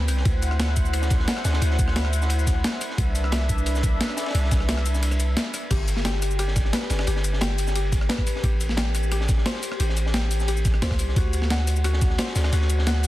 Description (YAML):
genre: liquid drum and bass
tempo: 176 BPM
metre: 4/4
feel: straight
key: G major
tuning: A4 = 440 Hz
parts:
  - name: warm analog pad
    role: sustained chords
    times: 0.0-5.7 s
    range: C4 to G5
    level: -30 LUFS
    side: left 1 dB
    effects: chorus, vintage 12-bit sampler grit
  - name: long sustained 808-style bass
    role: bass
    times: 0.0-13.1 s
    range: G1 to D2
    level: -23 LUFS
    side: equal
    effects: none
  - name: breakbeat sampler-style drum kit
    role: drums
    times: 0.1-13.1 s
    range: cabasa, crash cymbal, hi-hat, rim click, snare drum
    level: -29 LUFS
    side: equal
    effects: none
  - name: crunchy breakbeat drum kit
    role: drums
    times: 0.1-13.1 s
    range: ride cymbal, snare drum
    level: -33 LUFS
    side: equal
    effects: high-pass filter on cymbals, high-pass filter on snare, high-pass filter on room
  - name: electronic kick drum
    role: drums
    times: 0.3-12.1 s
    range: none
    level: -23 LUFS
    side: equal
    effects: none
  - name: Celtic harp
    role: arpeggios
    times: 5.7-13.1 s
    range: F#4 to G5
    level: -31 LUFS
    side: left 4 dB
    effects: digital delay
room: studio reverb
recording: dense, heavily limited modern master, faint mains hum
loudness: -21 LUFS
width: side -16 dB against mid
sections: 0.0-5.7 A section; 5.7-13.1 A section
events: drop 0.0-5.7, 5.7-13.1; break 5.0-5.7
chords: 0.3 D9; 3.0 Cmaj9; 5.7 G; 8.4 Am7; 11.2 D7